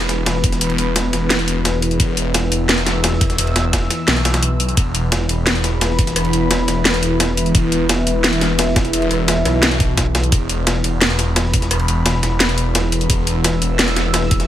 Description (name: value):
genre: dark technical drum and bass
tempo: 173 BPM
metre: 4/4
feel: straight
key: unclear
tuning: A4 = 439 Hz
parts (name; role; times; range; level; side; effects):
- dark analog pad; sustained chords; 0.0-14.5 s; E3 to E6; -21 LUFS; left 1 dB; chorus, sidechain pumping
- phased detuned saw bass; bass; 0.0-14.5 s; E1 to B1; -19 LUFS; equal; phaser, tube saturation
- drum and bass drum kit; drums; 0.0-14.5 s; hi-hat, rim click, snare drum; -19 LUFS; equal; none
- breakbeat sampler-style drum kit; drums; 0.1-14.5 s; ride cymbal, snare drum; -24 LUFS; right 1 dB; high-pass filter on cymbals, high-pass filter on snare
- electronic kick drum; drums; 0.4-14.4 s; none; -17 LUFS; equal; overdrive
room: light reverb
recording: none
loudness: -14 LUFS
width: side -12 dB against mid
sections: 0.0-14.5 A section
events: kick drops out 4.1-4.8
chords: 0.0 E5